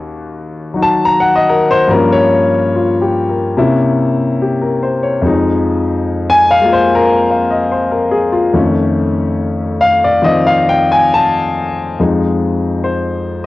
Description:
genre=solo jazz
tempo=71 BPM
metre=4/4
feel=swing 68% on 8ths, uneven beats, rubato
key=unclear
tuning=A4 = 440 Hz
part: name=warm concert grand piano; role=solo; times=0.0-13.5 s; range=Eb2 to Bb5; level=-11 LUFS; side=left 2 dB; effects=cassette tape
room=moderate small room reverb, RT60 0.6 s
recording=home recording on cassette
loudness=-11 LUFS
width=side -17 dB against mid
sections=0.0-12.0 A section; 12.0-13.5 B section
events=grand piano solo 0.0-12.0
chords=0.0 Ebm7; 1.9 Gm7b5; 3.6 C7b9; 5.2 Fm7; 8.5 F7b13; 12.0 Fm7

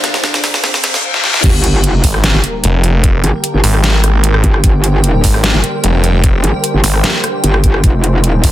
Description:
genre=heavy wobble dubstep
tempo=150 BPM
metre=4/4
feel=half-time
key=G phrygian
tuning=A4 = 439 Hz
part: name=clean electric guitar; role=melody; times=0.0-1.0 s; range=C3 to D4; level=-29 LUFS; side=equal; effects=digital delay
part: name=supersaw chords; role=sustained chords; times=0.0-8.5 s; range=C3 to C5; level=-23 LUFS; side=equal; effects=sidechain pumping, low-pass filter
part: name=dubstep drum kit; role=drums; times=0.0-8.5 s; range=crash cymbal, hi-hat, rim click, snare drum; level=-15 LUFS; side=equal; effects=high-pass filter on snare, high-pass filter on hats, high-pass filter on cymbals, high-pass filter on room
part: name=riser, reverse cymbal and sub drop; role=sound effects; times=0.0-3.0 s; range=none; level=-20 LUFS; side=left 2 dB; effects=none
part: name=granular cloud pad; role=texture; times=0.0-8.5 s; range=C4 to C6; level=-23 LUFS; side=equal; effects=built-in reverb, sidechain pumping
part: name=metallic wobble bass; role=bass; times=1.4-8.4 s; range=F1 to Ab1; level=-12 LUFS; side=equal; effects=chorus, overdrive
part: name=electronic kick drum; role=drums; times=1.4-8.5 s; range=none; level=-12 LUFS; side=equal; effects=none
part: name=snarling distorted saw bass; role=bass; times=2.0-8.5 s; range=F1 to Ab1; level=-12 LUFS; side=equal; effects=distortion, overdrive
room=digital ambience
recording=dense, heavily limited modern master, high-pass filter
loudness=-10 LUFS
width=side -14 dB against mid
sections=0.0-1.4 A section; 1.4-8.5 B section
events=build-up 0.0-1.4; drum fill 0.0-1.0, 1.1-1.4; reverse cymbal 0.6-1.4; drop 1.4-8.5; impact 1.4-3.0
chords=0.0 Bbadd9; 1.4 Gm; 7.8 Fm

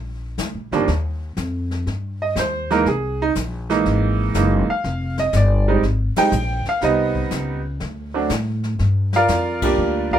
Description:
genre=jazz piano trio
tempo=121 BPM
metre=4/4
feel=swing 68% on 8ths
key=Eb major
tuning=A4 = 440 Hz
part: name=upright bass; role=bass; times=0.0-10.2 s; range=F1 to A2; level=-22 LUFS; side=left 1 dB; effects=none
part: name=jazz brush drum kit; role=drums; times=0.4-10.2 s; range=brushed snare drum, crash cymbal, hi-hat, kick drum, ride cymbal, snare drum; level=-30 LUFS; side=left 4 dB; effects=none
part: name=bright upright piano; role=melody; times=0.7-10.2 s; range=Eb2 to G5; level=-19 LUFS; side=right 3 dB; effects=none
room=light reverb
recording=minimal, uncompressed stereo recording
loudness=-18 LUFS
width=side -10 dB against mid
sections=0.9-10.2 A section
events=band accent 6.1, 9.5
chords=0.0 Bb7; 0.9 Ebadd9; 2.9 C7alt; 4.8 Fm9; 6.8 Cmmaj7; 7.8 D5; 8.8 Gm7

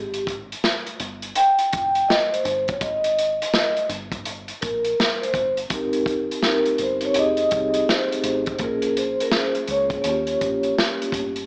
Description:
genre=hip hop, jazz-hop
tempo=83 BPM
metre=4/4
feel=swing 65% on 16ths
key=Ab major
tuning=A4 = 440 Hz
part: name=vibraphone with soft mallets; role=accompaniment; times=0.0-11.5 s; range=Bb3 to G5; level=-25 LUFS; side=equal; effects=none
part: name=deep dub fingered electric bass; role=bass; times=0.0-11.4 s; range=F1 to Eb2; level=-40 LUFS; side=equal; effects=none
part: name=crunchy breakbeat drum kit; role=drums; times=0.1-11.5 s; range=hi-hat, kick drum, snare drum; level=-27 LUFS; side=equal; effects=none
part: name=vibraphone with soft mallets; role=melody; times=6.5-10.7 s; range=Bb4 to Eb5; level=-26 LUFS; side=equal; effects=tape echo
room=light reverb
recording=small speaker sound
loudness=-22 LUFS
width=mono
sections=0.0-5.7 A section; 5.7-11.5 B section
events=vibraphone solo 0.0-5.7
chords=0.0 Absus2; 5.7 Abmaj9; 7.1 Fm7; 8.6 Bbm7; 10.0 Eb7

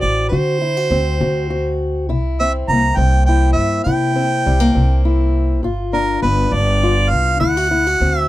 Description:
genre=acoustic country blues, solo or duo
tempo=68 BPM (dotted quarters)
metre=12/8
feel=straight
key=unclear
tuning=A4 = 440 Hz
part: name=warm harmonica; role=melody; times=0.0-8.3 s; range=Bb4 to Bb5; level=-18 LUFS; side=right 2 dB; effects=none
part: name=fingerpicked steel-string acoustic guitar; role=accompaniment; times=0.0-8.3 s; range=G2 to F#4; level=-20 LUFS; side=left 3 dB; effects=none
part: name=upright bass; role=bass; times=0.0-8.3 s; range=G1 to D3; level=-17 LUFS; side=equal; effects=none
room=light reverb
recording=none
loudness=-14 LUFS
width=side -15 dB against mid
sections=0.0-8.3 A section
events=none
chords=0.0 D7; 2.1 C7; 5.7 G7; 7.4 D7

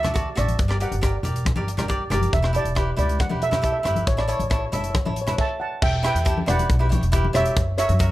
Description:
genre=calypso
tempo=138 BPM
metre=4/4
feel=straight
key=unclear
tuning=A4 = 439 Hz
part: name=steel pan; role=melody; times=0.0-8.1 s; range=C#5 to A5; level=-25 LUFS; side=right 2 dB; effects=none
part: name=cavaquinho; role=accompaniment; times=0.0-8.1 s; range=E4 to E5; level=-28 LUFS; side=equal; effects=none
part: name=upright bass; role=bass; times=0.0-8.1 s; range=E1 to F#2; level=-24 LUFS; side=equal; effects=none
part: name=tight funk drum kit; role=drums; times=0.0-8.1 s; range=crash cymbal, hi-hat, kick drum, rim click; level=-25 LUFS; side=equal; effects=none
part: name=congas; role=percussion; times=0.0-8.0 s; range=none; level=-29 LUFS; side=left 1 dB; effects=none
room=light reverb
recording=close, detailed microphones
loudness=-20 LUFS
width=side -16 dB against mid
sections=0.0-5.8 A section; 5.8-8.1 B section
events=none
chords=0.0 D; 0.6 Gm; 2.3 Em; 4.1 A; 5.8 Em; 7.6 F#7

